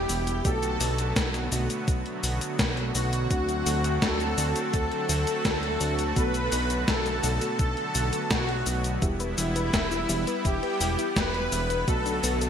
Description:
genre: synthwave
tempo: 84 BPM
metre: 4/4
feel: straight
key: unclear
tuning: A4 = 441 Hz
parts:
  - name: soft supersaw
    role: melody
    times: 0.0-12.5 s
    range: E4 to B4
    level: -30 LUFS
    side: equal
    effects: ping-pong delay
  - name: string machine, violins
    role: second line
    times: 0.0-12.5 s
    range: E4 to B4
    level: -36 LUFS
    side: equal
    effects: ensemble chorus, ping-pong delay
  - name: warm analog pad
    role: sustained chords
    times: 0.0-12.5 s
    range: D3 to F#4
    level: -33 LUFS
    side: equal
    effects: chorus, tremolo, sidechain pumping
  - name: fat analog bass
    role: bass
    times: 0.0-12.5 s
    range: E1 to D2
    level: -29 LUFS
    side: equal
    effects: sidechain pumping
  - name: gated 80s digital drum machine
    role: drums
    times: 0.1-12.5 s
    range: cabasa, hi-hat, snare drum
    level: -30 LUFS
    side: left 1 dB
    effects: gated reverb, gated reverb snare
  - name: electronic kick drum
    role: drums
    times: 0.4-12.0 s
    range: none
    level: -28 LUFS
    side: equal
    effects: none
  - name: mellow FM electric piano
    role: stabs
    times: 0.5-12.5 s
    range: B2 to G4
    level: -36 LUFS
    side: equal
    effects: chorus, ping-pong delay
  - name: soft round pluck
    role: arpeggios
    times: 9.0-12.5 s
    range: D4 to E5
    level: -35 LUFS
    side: left 6 dB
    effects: chorus, ping-pong delay
room: moderate lush hall reverb, RT60 2.7 s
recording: bright 1980s-style digital production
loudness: -24 LUFS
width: side -8 dB against mid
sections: 0.0-12.5 A section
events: none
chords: 0.5 Bm7; 3.3 D7; 6.2 Bm7; 9.0 Em; 11.9 Bm7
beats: | 0.45 1.16 1.88 2.59 | 3.31 4.02 4.74 5.45 | 6.16 6.88 7.59 8.31 | 9.02 9.73 10.45 11.16 | 11.88

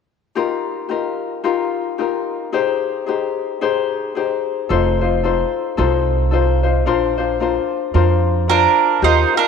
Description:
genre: Hawaiian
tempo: 111 BPM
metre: 4/4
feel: swing 58% on 8ths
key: Eb major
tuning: A4 = 440 Hz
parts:
  - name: ukulele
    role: accompaniment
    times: 0.4-9.5 s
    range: D4 to C5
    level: -18 LUFS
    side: left 9 dB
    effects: none
  - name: upright bass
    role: bass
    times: 4.7-9.2 s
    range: F1 to F2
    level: -18 LUFS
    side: right 3 dB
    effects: none
  - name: mandolin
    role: melody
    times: 8.5-9.5 s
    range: D4 to C5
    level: -13 LUFS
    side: right 12 dB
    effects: none
room: moderate plate reverb, RT60 2.4 s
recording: 1960s-style stereo with parts hard left and right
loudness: -16 LUFS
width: side -6 dB against mid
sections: 0.4-9.0 A section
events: none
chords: 0.4 Ebadd9; 2.5 Abmaj7; 4.7 F7; 6.9 Bbadd9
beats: | 0.36 0.90 1.44 1.98 | 2.53 3.07 3.61 4.15 | 4.70 5.24 5.78 6.32 | 6.87 7.41 7.95 8.49 | 9.03

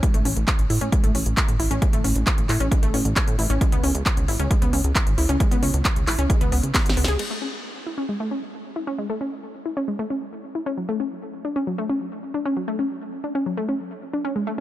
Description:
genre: uplifting trance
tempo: 134 BPM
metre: 4/4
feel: straight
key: A major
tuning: A4 = 440 Hz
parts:
  - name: wide unison pluck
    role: arpeggios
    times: 0.0-14.6 s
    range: F#3 to G#4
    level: -26 LUFS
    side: left 1 dB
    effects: sidechain pumping, digital delay
  - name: electronic kick drum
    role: drums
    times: 0.0-6.8 s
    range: none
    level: -22 LUFS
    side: equal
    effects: none
  - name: techno drum kit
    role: drums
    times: 0.0-7.3 s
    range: crash cymbal, handclaps, hi-hat, snare drum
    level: -27 LUFS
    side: equal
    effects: sidechain pumping on hats, sidechain pumping on cymbals
  - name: plucky analog bass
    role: bass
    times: 0.1-7.2 s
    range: G#1 to A2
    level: -23 LUFS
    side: equal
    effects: tube saturation, sidechain pumping
room: digital ambience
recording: none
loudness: -20 LUFS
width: side -14 dB against mid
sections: 0.0-7.2 A section; 7.2-14.6 B section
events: filter sweep on synth pluck 0.0-7.2; drum fill 6.7-7.2; band accent 7.0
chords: 0.0 A; 3.6 C#7(no3); 7.2 Amaj7; 10.8 Dmaj7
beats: | 0.03 0.48 0.93 1.37 | 1.82 2.27 2.72 3.16 | 3.61 4.06 4.51 4.96 | 5.40 5.85 6.30 6.75 | 7.19 7.64 8.09 8.54 | 8.98 9.43 9.88 10.33 | 10.78 11.22 11.67 12.12 | 12.57 13.01 13.46 13.91 | 14.36

